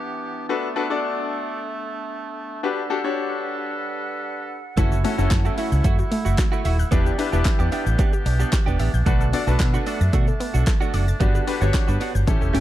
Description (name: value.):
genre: dance-pop.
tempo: 112 BPM.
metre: 4/4.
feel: straight.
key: B minor.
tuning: A4 = 440 Hz.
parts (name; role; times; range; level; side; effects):
clear woodwind section; sustained chords; 0.0-12.6 s; E3 to F#5; -31 LUFS; right 1 dB; sidechain pumping.
bright concert grand piano; accompaniment; 0.5-12.6 s; C#4 to D5; -26 LUFS; left 5 dB; sidechain pumping.
wide unison pluck; arpeggios; 4.8-12.6 s; D3 to A6; -31 LUFS; left 2 dB; auto-pan, sidechain pumping, dub echo.
direct-recorded clean electric guitar; riff; 4.8-12.6 s; A3 to G4; -29 LUFS; right 7 dB; analog chorus.
vintage muted fingered electric bass; bass; 4.8-12.6 s; D#1 to B2; -21 LUFS; equal; sidechain pumping.
deep house drum kit; drums; 4.8-12.6 s; handclaps, hi-hat, kick drum, shaker, snare drum; -22 LUFS; equal; none.
room: little or no reverb.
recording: dark, warm production.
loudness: -19 LUFS.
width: side -13 dB against mid.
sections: 0.0-12.6 A section.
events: none.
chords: 0.5 Bm7; 2.6 Gmaj7; 4.8 F#m7; 6.9 Em7; 9.1 Bm7; 11.2 Gmaj7.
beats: | 0.49 1.03 1.56 2.10 | 2.63 3.17 3.71 4.24 | 4.78 5.31 5.85 6.38 | 6.92 7.46 7.99 8.53 | 9.06 9.60 10.13 10.67 | 11.21 11.74 12.28.